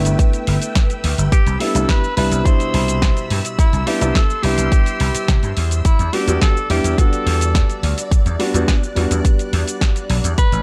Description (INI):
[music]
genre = nu-disco, nu disco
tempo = 106 BPM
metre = 4/4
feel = straight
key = unclear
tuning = A4 = 436 Hz
[part]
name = warm grand piano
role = accompaniment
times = 0.0-10.4 s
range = B2 to F#4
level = -25 LUFS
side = equal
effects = sidechain pumping, tape echo
[part]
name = string machine, full ensemble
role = sustained chords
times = 0.0-10.6 s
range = A4 to F#6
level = -33 LUFS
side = equal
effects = phaser, ensemble chorus, sidechain pumping
[part]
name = vintage slap bass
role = bass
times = 0.1-10.6 s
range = G1 to C3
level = -21 LUFS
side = equal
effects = none
[part]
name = house drum kit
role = drums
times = 0.1-10.6 s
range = cabasa, hi-hat, snare drum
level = -27 LUFS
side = equal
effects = none
[part]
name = electronic kick drum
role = drums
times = 0.2-10.5 s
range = none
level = -17 LUFS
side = equal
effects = none
[part]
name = clear tenor saxophone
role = melody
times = 1.3-10.6 s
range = E4 to C5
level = -26 LUFS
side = equal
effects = tape echo
[sound]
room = digital ambience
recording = none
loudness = -17 LUFS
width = mono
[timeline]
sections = 0.0-10.6 A section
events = none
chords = 0.0 G6; 1.3 Cmaj7; 5.8 Em7